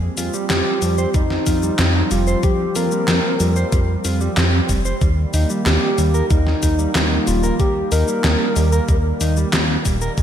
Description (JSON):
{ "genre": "synthwave", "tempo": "93 BPM", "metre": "4/4", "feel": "straight", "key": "unclear", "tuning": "A4 = 440 Hz", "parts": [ { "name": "warm analog pad", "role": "sustained chords", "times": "0.0-10.2 s", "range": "Db3 to C4", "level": "-25 LUFS", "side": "right 1 dB", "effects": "chorus, sidechain pumping" }, { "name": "chorused synth bass", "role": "bass", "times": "0.0-10.2 s", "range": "Eb1 to F2", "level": "-19 LUFS", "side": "equal", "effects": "sidechain pumping" }, { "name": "mellow electric guitar", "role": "arpeggios", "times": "0.2-10.2 s", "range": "G3 to C5", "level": "-27 LUFS", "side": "right 2 dB", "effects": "ping-pong delay" }, { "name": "gated 80s digital drum machine", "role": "drums", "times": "0.2-10.2 s", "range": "cabasa, handclaps, hi-hat, snare drum", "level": "-22 LUFS", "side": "equal", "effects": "gated reverb, gated reverb snare, overdrive" }, { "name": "soft octave-layered synth lead", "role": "melody", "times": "0.5-9.2 s", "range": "Eb4 to Bb4", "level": "-23 LUFS", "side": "left 1 dB", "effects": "chorus, digital delay" }, { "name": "electronic kick drum", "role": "drums", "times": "1.1-10.2 s", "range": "none", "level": "-19 LUFS", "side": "equal", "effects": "overdrive" } ], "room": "moderate lush hall reverb, RT60 1.7 s, digital ambience", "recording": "bright 1980s-style digital production", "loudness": "-15 LUFS", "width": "side -9 dB against mid", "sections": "0.0-10.2 A section", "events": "none", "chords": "0.0 Fsus2; 5.0 Eb", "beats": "0.50 1.15 1.79 | 2.44 3.08 3.73 4.37 | 5.02 5.66 6.31 6.95 | 7.60 8.24 8.89 9.53 | 10.18" }